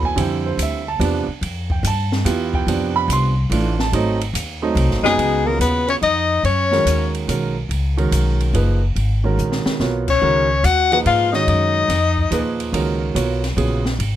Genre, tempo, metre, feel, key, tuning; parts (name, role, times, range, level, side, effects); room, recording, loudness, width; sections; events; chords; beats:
modal jazz; 143 BPM; 3/4; swing 67% on 8ths; Db mixolydian from 5.2 s; A4 = 439 Hz
warm grand piano; accompaniment; 0.0-13.8 s; Bb2 to C6; -21 LUFS; right 4 dB
upright bass; bass; 0.0-14.2 s; F#1 to Ab2; -20 LUFS; equal
open jazz drum kit; drums; 0.0-14.1 s; crash cymbal, hi-hat, kick drum, ride cymbal, snare drum; -27 LUFS; right 1 dB
breathy tenor saxophone; second line; 5.0-7.1, 10.1-12.6 s; G#3 to Gb4; -22 LUFS; left 8 dB
breathy soprano saxophone; melody; 5.1-7.1, 10.1-12.6 s; G#4 to Gb5; -18 LUFS; left 4 dB
little or no reverb; close, detailed microphones; -16 LUFS; side -12 dB against mid
0.0-5.2 A section; 5.2-14.2 B section
drum fill 9.4-9.8
0.2 Fmaj9; 3.9 G#7b9; 5.2 Db9sus4
| 0.16 0.58 1.00 | 1.42 1.83 2.25 | 2.67 3.09 3.51 | 3.92 4.34 4.76 | 5.18 5.60 6.02 | 6.44 6.86 7.28 | 7.70 8.12 8.54 | 8.96 9.38 9.80 | 10.22 10.64 11.06 | 11.48 11.90 12.32 | 12.74 13.16 13.58 | 14.00